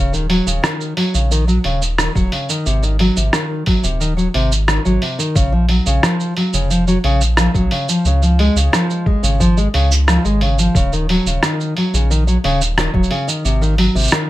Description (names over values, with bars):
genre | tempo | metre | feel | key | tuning
folktronica | 89 BPM | 4/4 | straight | Eb dorian | A4 = 439 Hz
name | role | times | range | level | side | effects
fingerpicked steel-string acoustic guitar | arpeggios | 0.0-14.3 s | C3 to Ab3 | -18 LUFS | equal | tape echo
warm sub bass | bass | 0.0-14.1 s | Eb1 to Db2 | -16 LUFS | equal | none
lo-fi sampler-style drum kit | drums | 0.1-14.3 s | cabasa, hi-hat, rim click | -20 LUFS | right 1 dB | none
electronic kick drum | drums | 2.2-13.1 s | none | -17 LUFS | equal | none
room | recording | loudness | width
light reverb | none | -13 LUFS | side -16 dB against mid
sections
0.0-14.3 A section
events
none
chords
0.0 Ebm7; 2.7 Ab7; 5.4 Gbmaj7; 8.1 Db; 10.8 Ebm7; 13.4 Ab7